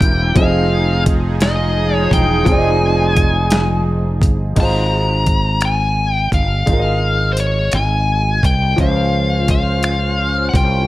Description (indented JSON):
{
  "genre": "slow six-eight R&B",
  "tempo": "57 BPM (dotted quarters)",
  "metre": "6/8",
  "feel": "straight",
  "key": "unclear",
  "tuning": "A4 = 441 Hz",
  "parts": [
    { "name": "fuzz lead guitar", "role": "melody", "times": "0.0-10.9 s", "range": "C5 to Bb5", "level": "-19 LUFS", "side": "left 2 dB", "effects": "distortion, slapback echo" },
    { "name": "clear grand piano", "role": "accompaniment", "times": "0.0-10.9 s", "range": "C3 to Eb5", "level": "-23 LUFS", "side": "equal", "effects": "none" },
    { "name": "warm analog pad", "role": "sustained chords", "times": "0.0-4.5, 8.8-10.9 s", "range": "C3 to C5", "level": "-24 LUFS", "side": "equal", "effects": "chorus, tremolo" },
    { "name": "fretless electric bass", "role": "bass", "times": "0.0-10.9 s", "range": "E1 to Db2", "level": "-17 LUFS", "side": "equal", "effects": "none" },
    { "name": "dusty soul sampler-style drum kit", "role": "drums", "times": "0.0-10.7 s", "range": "crash cymbal, finger snaps, hi-hat, kick drum, snare drum", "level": "-17 LUFS", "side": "equal", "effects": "none" },
    { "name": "mellow horn section", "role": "stabs", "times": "1.4-4.2 s", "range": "F3 to Ab4", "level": "-22 LUFS", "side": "right 4 dB", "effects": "none" }
  ],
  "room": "digital ambience",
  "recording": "none",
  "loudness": "-13 LUFS",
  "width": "side -16 dB against mid",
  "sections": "0.0-4.6 A section; 4.6-10.9 B section",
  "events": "none",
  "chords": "0.4 Fm7; 4.6 Ab6; 8.8 Dbmaj7",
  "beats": "| 0.36 1.41 | 2.46 3.52 | 4.57 5.62 | 6.67 7.73 | 8.78 9.83"
}